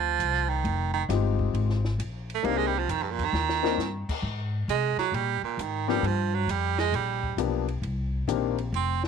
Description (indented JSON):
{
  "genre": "jazz, small-group swing and bop",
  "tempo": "134 BPM",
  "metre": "4/4",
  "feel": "swing 66% on 8ths",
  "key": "C minor",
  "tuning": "A4 = 442 Hz",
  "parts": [
    { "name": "edgy baritone saxophone", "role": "second line", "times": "0.0-9.1 s", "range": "G2 to C4", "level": "-27 LUFS", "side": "right 12 dB", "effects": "none" },
    { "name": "upright bass", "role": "bass", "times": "0.0-9.1 s", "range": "F1 to C3", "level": "-29 LUFS", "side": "left 1 dB", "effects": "none" },
    { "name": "compact cocktail drum kit", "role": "drums", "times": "0.2-9.1 s", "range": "crash cymbal, hi-hat, kick drum, ride cymbal, snare drum", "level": "-38 LUFS", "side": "left 2 dB", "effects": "none" },
    { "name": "warm grand piano", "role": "accompaniment", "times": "1.1-8.6 s", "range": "Eb3 to Bb4", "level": "-28 LUFS", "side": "left 17 dB", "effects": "none" }
  ],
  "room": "light reverb, small room ambience",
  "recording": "1960s-style stereo with parts hard left and right",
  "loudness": "-25 LUFS",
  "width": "side -6 dB against mid",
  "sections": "0.0-9.1 A section",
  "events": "baritone saxophone solo 0.0-9.1; drum fill 3.3-3.8",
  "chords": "0.0 Fm7; 2.4 Cm7; 4.2 Abmaj7; 6.0 G7#9; 7.8 Cm7"
}